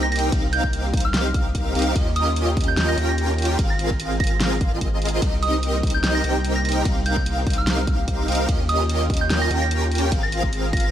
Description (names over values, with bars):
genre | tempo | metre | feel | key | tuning
future bass | 147 BPM | 4/4 | swing 55% on 16ths, half-time | C minor | A4 = 440 Hz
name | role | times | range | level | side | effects
soft synth bell | melody | 0.0-10.9 s | Eb6 to Bb6 | -27 LUFS | right 2 dB | chorus, phaser, sidechain pumping, digital delay
airy breathy pad | sustained chords | 0.0-10.9 s | C3 to G4 | -33 LUFS | equal | chorus, sidechain pumping
airy dreamy lead | arpeggios | 0.0-10.9 s | Eb5 to G5 | -31 LUFS | equal | chorus, sidechain pumping, tape echo
supersaw chords | riff | 0.0-10.9 s | C4 to G5 | -25 LUFS | equal | ensemble chorus, sidechain pumping
saturated sub bass | bass | 0.0-10.9 s | Ab1 to Eb2 | -24 LUFS | equal | sidechain pumping
pop drum kit | drums | 0.1-10.9 s | hi-hat, ride cymbal, snare drum | -28 LUFS | equal | small room ambience
electronic kick drum | drums | 0.3-10.8 s | none | -23 LUFS | equal | small room ambience
room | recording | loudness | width
digital ambience | none | -19 LUFS | side -10 dB against mid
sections
0.0-10.9 A section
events
none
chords
0.0 Cm7; 2.0 Eb9; 3.6 Ab69; 5.2 Cm7; 8.5 Eb9; 10.1 Ab69